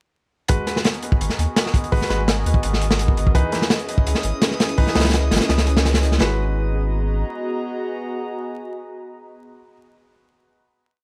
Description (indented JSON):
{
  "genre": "drum and bass, jungle",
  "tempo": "168 BPM",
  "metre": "4/4",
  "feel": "straight",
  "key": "G# minor",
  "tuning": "A4 = 439 Hz",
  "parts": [
    { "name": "warbly tape-like pad", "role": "sustained chords", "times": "0.8-9.7 s", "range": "B3 to A#5", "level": "-30 LUFS", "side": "equal", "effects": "chorus, built-in reverb, phaser, vintage 12-bit sampler grit" },
    { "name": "warm concert grand piano", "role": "stabs", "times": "0.5-9.7 s", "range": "E3 to B4", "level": "-31 LUFS", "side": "equal", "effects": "dub echo" },
    { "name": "saturated sub bass", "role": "bass", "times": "0.5-7.2 s", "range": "G#1 to D#2", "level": "-23 LUFS", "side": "equal", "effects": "tube saturation" },
    { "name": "crunchy breakbeat drum kit", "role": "drums", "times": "0.5-6.3 s", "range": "hi-hat, kick drum, snare drum", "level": "-21 LUFS", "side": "equal", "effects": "none" },
    { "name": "drifting glass-harmonics texture", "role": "texture", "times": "3.9-6.2 s", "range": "D#6", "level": "-39 LUFS", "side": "equal", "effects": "chorus, built-in reverb" }
  ],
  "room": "light reverb, studio reverb",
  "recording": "vinyl crackle",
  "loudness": "-20 LUFS",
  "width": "mono",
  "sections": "0.5-6.2 drop; 6.2-9.1 final chord",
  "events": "drop 0.5-6.2",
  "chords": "0.5 G#m7; 3.3 C#m9; 6.2 G#m7"
}